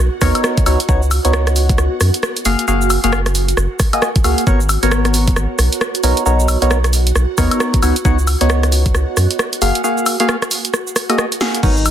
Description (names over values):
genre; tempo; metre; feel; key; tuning
UK garage, two-step garage; 134 BPM; 4/4; swing 61% on 16ths; unclear; A4 = 438 Hz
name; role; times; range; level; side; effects
ethereal airy pad; sustained chords; 0.0-11.9 s; F#4 to E#5; -26 LUFS; right 5 dB; ensemble chorus, built-in reverb, phaser, sidechain pumping
soft dub sub bass; bass; 0.0-11.9 s; F#1 to F#2; -15 LUFS; equal; tube saturation, sidechain pumping
percussive organ stab; stabs; 0.2-11.8 s; A#3 to E#5; -18 LUFS; left 1 dB; chorus, phaser, tape echo
electronic kick drum; drums; 0.2-8.9, 11.6-11.7 s; none; -16 LUFS; equal; overdrive
punchy analog drum machine; drums; 0.2-11.9 s; crash cymbal, hi-hat, rim click, shaker, snare drum, woodblock; -19 LUFS; equal; soft clipping on snare
nylon-string guitar; melody; 11.6-11.9 s; D#4; -19 LUFS; left 3 dB; none
room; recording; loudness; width
digital ambience; dense, heavily limited modern master; -13 LUFS; side -10 dB against mid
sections
0.0-11.9 A section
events
break 9.8-11.6; drum fill 11.4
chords
0.0 Bmaj9; 0.7 C#9sus4; 2.5 F#maj9; 4.5 G#m11; 6.0 Bmaj9; 7.8 C#9sus4; 9.6 F#maj9